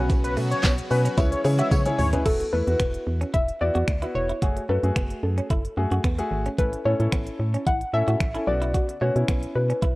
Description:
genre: dance-pop.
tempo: 111 BPM.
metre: 4/4.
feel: straight.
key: unclear.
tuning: A4 = 441 Hz.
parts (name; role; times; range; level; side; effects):
clear grand piano; accompaniment; 0.0-9.8 s; C#3 to C#5; -29 LUFS; left 1 dB; sidechain pumping.
supersaw pad; sustained chords; 0.0-2.2 s; C#3 to F#4; -35 LUFS; equal; phaser, sidechain pumping.
direct-recorded clean electric guitar; riff; 0.0-9.9 s; A3 to F#4; -33 LUFS; right 2 dB; lush chorus.
organ-like FM bass; bass; 0.0-10.0 s; E1 to C#3; -25 LUFS; equal; sidechain pumping.
pop drum kit; drums; 0.1-10.0 s; crash cymbal, finger snaps, handclaps, hi-hat, kick drum, shaker, snare drum, toms; -24 LUFS; equal; none.
tambourine; percussion; 0.1-1.9 s; none; -43 LUFS; right 4 dB; none.
wide unison lead; melody; 0.2-2.1 s; B4 to E5; -28 LUFS; left 1 dB; sidechain pumping, tape echo.
soft round pluck; melody; 2.3-10.0 s; A4 to F#5; -27 LUFS; left 1 dB; chorus, tape echo.
room: digital ambience.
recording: worn, warbling old tape, cassette tape, warbly pitch drift.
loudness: -21 LUFS.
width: side -20 dB against mid.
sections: 0.0-2.3 A section; 2.3-10.0 B section.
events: drop 0.0-2.3; drum fill 1.7-2.3.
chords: 0.0 Bsus2; 1.2 C#m; 2.3 Esus2; 4.4 F#madd9; 6.6 A; 8.5 Bsus2.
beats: | 0.10 0.64 1.18 1.72 | 2.26 2.80 3.34 3.88 | 4.42 4.96 5.50 6.04 | 6.58 7.12 7.66 8.20 | 8.74 9.29 9.82.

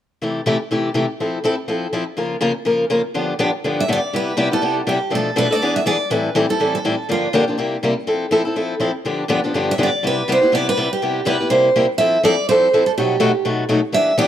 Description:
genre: jazz.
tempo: 245 BPM.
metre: 4/4.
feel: swing 56% on 8ths.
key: C major.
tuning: A4 = 438 Hz.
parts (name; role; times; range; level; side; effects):
picked old ladder-braced acoustic guitar; accompaniment; 0.2-14.3 s; G2 to Bb4; -18 LUFS; left 2 dB; none.
picked steel-string acoustic guitar; melody; 3.8-7.5, 9.7-14.3 s; F4 to E5; -18 LUFS; right 2 dB; none.
room: light reverb, studio reverb.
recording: dry, close 1970s-style studio recording.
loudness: -16 LUFS.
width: side -10 dB against mid.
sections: 0.2-4.1 A section; 4.1-12.0 B section; 12.0-14.3 C section.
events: none.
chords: 0.2 C6; 1.2 Fmaj7; 2.2 Db6; 3.1 G7; 4.1 Cmaj7; 5.1 Bm7b5; 5.6 E7; 6.1 Am7; 7.1 Gm7; 7.6 C7; 8.1 Fmaj7; 9.0 G7; 10.0 Cmaj7; 11.5 C7; 12.0 Fmaj7; 13.0 B7b13.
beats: | 0.21 0.45 0.70 0.94 | 1.19 1.43 1.68 1.92 | 2.17 2.41 2.66 2.90 | 3.15 3.39 3.64 3.88 | 4.13 4.38 4.62 4.87 | 5.11 5.36 5.60 5.85 | 6.09 6.34 6.59 6.83 | 7.08 7.32 7.57 7.82 | 8.06 8.31 8.55 8.80 | 9.04 9.29 9.54 9.78 | 10.03 10.27 10.52 10.76 | 11.01 11.25 11.50 11.74 | 11.99 12.23 12.47 12.72 | 12.96 13.21 13.45 13.69 | 13.94 14.18.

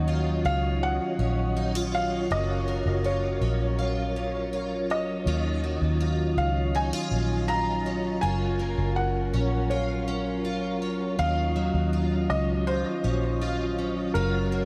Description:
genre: dream pop.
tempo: 81 BPM.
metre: 4/4.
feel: straight.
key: Eb minor.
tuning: A4 = 440 Hz.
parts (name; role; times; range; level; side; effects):
felt-muted upright piano; melody; 0.0-14.7 s; Bb4 to Bb5; -34 LUFS; equal; delay.
mellow tonewheel organ; sustained chords; 0.0-14.7 s; Gb3 to F5; -34 LUFS; equal; chorus vibrato, slow rotary speaker.
picked plugged-in twelve-string acoustic guitar; arpeggios; 0.0-14.7 s; Eb3 to F4; -33 LUFS; equal; ensemble chorus, delay.
vintage muted fingered electric bass; bass; 0.0-14.7 s; Gb1 to Eb2; -30 LUFS; equal; none.
room: moderate huge ambient reverb, RT60 8.2 s.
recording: none.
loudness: -27 LUFS.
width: mono.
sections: 0.0-14.7 A section.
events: none.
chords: 0.0 Ebm9; 2.3 Gbmaj7; 5.3 Ebm9; 8.2 Gbmaj7; 11.2 Ebm9; 14.2 Gbmaj7.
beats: 0.08 0.82 1.56 | 2.30 3.04 3.78 4.52 | 5.26 6.00 6.74 7.48 | 8.22 8.96 9.71 10.45 | 11.19 11.93 12.67 13.41 | 14.15.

